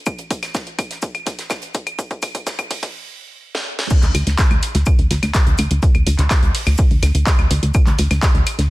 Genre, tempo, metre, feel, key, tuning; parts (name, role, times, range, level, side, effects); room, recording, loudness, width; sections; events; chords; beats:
melodic techno; 125 BPM; 4/4; straight; A4 = 440 Hz
plucky analog bass; bass; 0.0-8.7 s; D2; -17 LUFS; equal; sidechain pumping, high-pass filter
damped 70s drum kit; drums; 0.1-8.7 s; hi-hat, shaker, snare drum; -32 LUFS; right 1 dB; sidechain pumping on hats, high-pass filter on hats, high-pass filter on snare, sidechain pumping on perc, high-pass filter on perc, high-pass filter on room
electronic kick drum; drums; 0.1-8.3 s; -16 LUFS; equal
techno drum kit; drums; 0.1-8.7 s; claves, crash cymbal, handclaps, hi-hat, snare drum; -23 LUFS; equal; sidechain pumping on hats, sidechain pumping on perc, sidechain pumping on cymbals
little or no reverb; dense, heavily limited modern master, high-pass filter; -15 LUFS; side -19 dB against mid
0.0-3.9 A section; 3.9-8.7 B section
build-up 0.0-3.9; drum fill 0.0-2.9, 3.5-3.9; drop 3.9-8.7
| 0.07 0.55 1.03 1.51 | 1.99 2.47 2.95 3.43 | 3.91 4.39 4.87 5.35 | 5.83 6.31 6.79 7.27 | 7.75 8.23